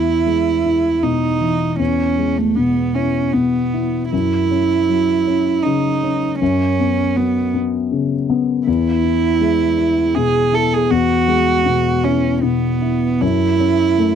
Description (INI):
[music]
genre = neoclassical piano and strings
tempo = 79 BPM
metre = 3/4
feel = rubato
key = E major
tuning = A4 = 440 Hz
[part]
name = warm cello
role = second line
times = 0.0-14.2 s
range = A3 to A4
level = -17 LUFS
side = right 6 dB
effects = none
[part]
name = dark concert grand piano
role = accompaniment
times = 0.0-14.2 s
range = E2 to E4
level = -18 LUFS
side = left 6 dB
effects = none
[sound]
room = light reverb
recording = dry, close 1970s-style studio recording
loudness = -14 LUFS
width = side -8 dB against mid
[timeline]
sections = 0.0-14.2 A section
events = none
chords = 0.0 E; 4.1 F#5; 6.4 Bsus2/F#; 8.7 E; 13.2 F#m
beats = 0.27 1.03 | 1.79 2.56 3.33 | 4.12 4.89 5.64 | 6.41 7.16 7.91 | 8.67 9.41 10.16 | 10.91 11.66 12.43 | 13.22 14.00